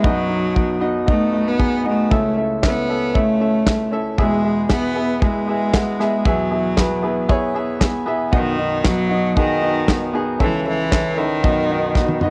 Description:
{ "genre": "piano-driven pop", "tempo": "116 BPM", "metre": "4/4", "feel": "straight", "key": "unclear", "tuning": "A4 = 437 Hz", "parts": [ { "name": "bright cello", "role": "melody", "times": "0.0-12.2 s", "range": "D#3 to B3", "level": "-23 LUFS", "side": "equal", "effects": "cassette tape" }, { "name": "clear concert grand piano", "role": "accompaniment", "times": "0.0-12.3 s", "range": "B1 to F#5", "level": "-23 LUFS", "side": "equal", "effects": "cassette tape" }, { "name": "damped 70s drum kit", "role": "drums", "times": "0.0-12.3 s", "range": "handclaps, kick drum, snare drum, toms", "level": "-20 LUFS", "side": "equal", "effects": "cassette tape" } ], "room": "moderate studio reverb, RT60 0.6 s", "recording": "home recording on cassette", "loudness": "-19 LUFS", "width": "mono", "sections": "0.0-12.3 A section", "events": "drum fill 12.0-12.3", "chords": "0.0 B; 2.1 A/C#; 4.2 E; 8.3 B; 10.4 A/C#; 11.4 B", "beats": "| 0.04 0.56 1.08 1.59 | 2.11 2.63 3.15 3.67 | 4.18 4.70 5.22 5.74 | 6.26 6.78 7.29 7.81 | 8.33 8.85 9.37 9.88 | 10.40 10.92 11.44 11.96" }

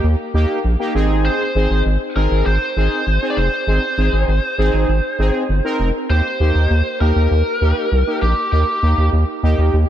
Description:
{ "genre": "synth-pop", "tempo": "99 BPM", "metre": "4/4", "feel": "straight", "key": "Eb major", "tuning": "A4 = 438 Hz", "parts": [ { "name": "analog synth brass", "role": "accompaniment", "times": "0.0-9.8 s", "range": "Bb3 to Bb4", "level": "-21 LUFS", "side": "right 1 dB", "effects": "chorus" }, { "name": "round analog bass", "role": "bass", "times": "0.0-9.9 s", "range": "F1 to Eb2", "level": "-15 LUFS", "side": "equal", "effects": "none" }, { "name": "biting lead guitar", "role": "melody", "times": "1.3-9.1 s", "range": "G4 to D5", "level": "-21 LUFS", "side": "equal", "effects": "overdrive, digital delay" } ], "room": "light reverb, digital ambience", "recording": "dark, warm production", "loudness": "-15 LUFS", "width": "side -11 dB against mid", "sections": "0.0-9.9 A section", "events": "none", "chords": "0.0 Eb; 0.9 Ab; 6.1 Eb", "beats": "0.04 0.65 | 1.25 1.86 2.46 3.07 | 3.68 4.28 4.89 5.49 | 6.10 6.71 7.31 7.92 | 8.53 9.13 9.74" }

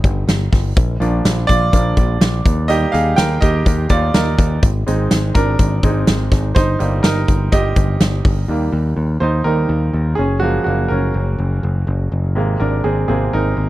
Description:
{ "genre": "piano-driven pop", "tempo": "124 BPM", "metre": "4/4", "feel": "straight", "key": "Eb major", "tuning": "A4 = 440 Hz", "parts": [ { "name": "bright grand piano", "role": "accompaniment", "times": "0.0-13.7 s", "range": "C3 to G5", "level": "-19 LUFS", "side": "right 2 dB", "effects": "none" }, { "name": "picked electric bass", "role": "bass", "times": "0.0-13.7 s", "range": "Gb1 to Eb2", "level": "-18 LUFS", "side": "equal", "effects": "none" }, { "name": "huge arena drum kit", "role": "drums", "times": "0.0-8.4 s", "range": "hi-hat, kick drum, snare drum", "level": "-16 LUFS", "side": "equal", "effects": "none" } ], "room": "little or no reverb", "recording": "dry, close 1970s-style studio recording", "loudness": "-14 LUFS", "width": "side -16 dB against mid", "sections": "0.0-8.5 A section; 8.5-13.7 B section", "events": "grand piano solo 0.0-8.5, 8.5-13.7", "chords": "0.0 Eb/G; 0.8 Bb; 2.5 Eb; 4.6 Ab; 6.6 Eb/G; 8.5 Eb; 10.2 Gbmaj7; 12.4 Abadd9", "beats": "0.28 | 0.77 1.25 1.73 2.21 | 2.70 3.18 3.66 4.14 | 4.63 5.11 5.59 6.08 | 6.56 7.04 7.53 8.01 | 8.49 8.97 9.46 9.94 | 10.43 10.91 11.39 11.88 | 12.36 12.85 13.33" }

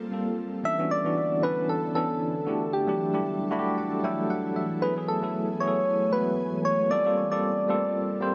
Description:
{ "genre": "amapiano", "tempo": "115 BPM", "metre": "4/4", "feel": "swing 55% on 16ths", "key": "B minor", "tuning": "A4 = 440 Hz", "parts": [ { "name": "tine electric piano", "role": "accompaniment", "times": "0.0-8.3 s", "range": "E3 to B5", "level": "-31 LUFS", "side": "equal", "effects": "medium tremolo" }, { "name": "ethereal airy pad", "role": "sustained chords", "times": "0.0-8.3 s", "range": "D3 to G#5", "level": "-37 LUFS", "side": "equal", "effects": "ensemble chorus, built-in reverb" }, { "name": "soft struck synth lead", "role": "melody", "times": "0.7-8.3 s", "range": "G4 to E5", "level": "-29 LUFS", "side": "equal", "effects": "chorus, tape echo" } ], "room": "moderate lush hall reverb, RT60 2.7 s", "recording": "none", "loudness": "-27 LUFS", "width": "mono", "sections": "0.6-8.3 A section", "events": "tine electric piano fill 3.3-4.8", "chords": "0.0 Gm11; 0.6 Bm11; 2.5 Em11; 4.8 F#m11; 6.9 Gm11", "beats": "0.12 | 0.64 1.16 1.69 2.21 | 2.73 3.25 3.77 4.29 | 4.82 5.34 5.86 6.38 | 6.90 7.42 7.95" }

